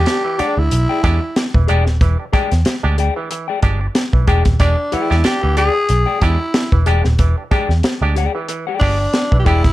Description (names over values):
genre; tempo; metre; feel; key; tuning
funk; 92 BPM; 4/4; swing 56% on 16ths; unclear; A4 = 437 Hz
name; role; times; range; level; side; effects
growling tenor saxophone; melody; 0.0-9.7 s; D4 to G#4; -19 LUFS; equal; none
overdriven clav; stabs; 0.0-9.6 s; E3 to G4; -24 LUFS; right 4 dB; auto-wah, tape echo
vintage muted picked electric bass; bass; 0.0-9.7 s; D#1 to E2; -15 LUFS; equal; none
mellow electric guitar; accompaniment; 0.1-9.7 s; G#4 to G5; -22 LUFS; left 8 dB; none
tight funk drum kit; drums; 0.1-9.7 s; hi-hat, kick drum, snare drum; -17 LUFS; equal; none
room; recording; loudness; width
light reverb; dark, warm production; -14 LUFS; side -16 dB against mid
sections
0.0-9.7 A section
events
none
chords
0.0 E7#9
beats
0.06 0.71 1.36 | 2.01 2.66 3.30 3.95 | 4.60 5.25 5.90 6.55 | 7.20 7.85 8.49 9.14